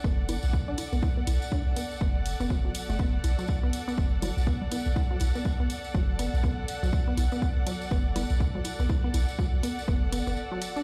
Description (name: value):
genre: minimal techno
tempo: 122 BPM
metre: 4/4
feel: swing 60% on 16ths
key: B minor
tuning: A4 = 441 Hz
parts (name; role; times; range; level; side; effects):
- resonant blip pluck; riff; 0.0-10.8 s; F#3 to D4; -38 LUFS; equal; chorus, sidechain pumping, dub echo
- punchy sub bass; bass; 0.0-10.4 s; F#1 to B1; -30 LUFS; equal; sidechain pumping
- electronic kick drum; drums; 0.0-10.0 s; none; -31 LUFS; equal; none
- tambourine; percussion; 0.0-10.8 s; none; -45 LUFS; equal; none
- warm chamber string section; texture; 0.0-10.8 s; A4 to F#5; -40 LUFS; equal; sidechain pumping
- electronic hi-hat; drums; 0.3-10.7 s; none; -40 LUFS; equal; none
- bongos and congas; percussion; 0.3-9.5 s; none; -42 LUFS; equal; dub echo
room: digital ambience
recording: played on a big sound system in a bare room, stone room reverb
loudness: -28 LUFS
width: mono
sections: 0.0-10.8 A section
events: filter sweep on synth pluck 0.0-10.8; break 10.4-10.8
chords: 0.0 Bm7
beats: 0.04 0.54 | 1.03 1.52 2.01 2.50 | 2.99 3.49 3.98 4.47 | 4.96 5.45 5.95 6.44 | 6.93 7.42 7.91 8.40 | 8.90 9.39 9.88 10.37